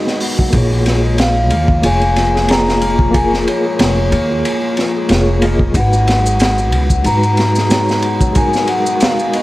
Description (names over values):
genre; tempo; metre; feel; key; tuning
trip hop; 92 BPM; 4/4; swing 56% on 16ths; unclear; A4 = 440 Hz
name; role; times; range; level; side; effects
vibraphone with soft mallets; melody; 0.0-9.4 s; C#5 to A#5; -18 LUFS; left 1 dB; dub echo
mellow reed electric piano; accompaniment; 0.0-9.4 s; G#3 to D#5; -19 LUFS; equal; fast tremolo, tape echo
deep dark ambient pad; sustained chords; 0.0-9.4 s; G#3 to C#5; -26 LUFS; equal; none
felt-muted upright piano; arpeggios; 0.0-9.4 s; E#3 to B3; -24 LUFS; left 2 dB; vintage 12-bit sampler grit, tape echo
crunchy breakbeat drum kit; drums; 0.1-9.4 s; hi-hat, kick drum, ride cymbal, snare drum; -17 LUFS; equal; none
upright bass; bass; 0.5-9.4 s; E#1 to G#2; -16 LUFS; equal; none
maracas; percussion; 5.7-9.3 s; none; -29 LUFS; equal; none
room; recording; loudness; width
small room ambience; echo-heavy mix, vinyl crackle; -11 LUFS; side -17 dB against mid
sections
0.0-9.4 A section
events
none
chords
0.0 G#m7; 0.5 A#m7; 5.7 G#m7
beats
| 0.53 1.18 1.84 2.49 | 3.14 3.79 4.44 5.10 | 5.75 6.40 7.05 7.71 | 8.36 9.01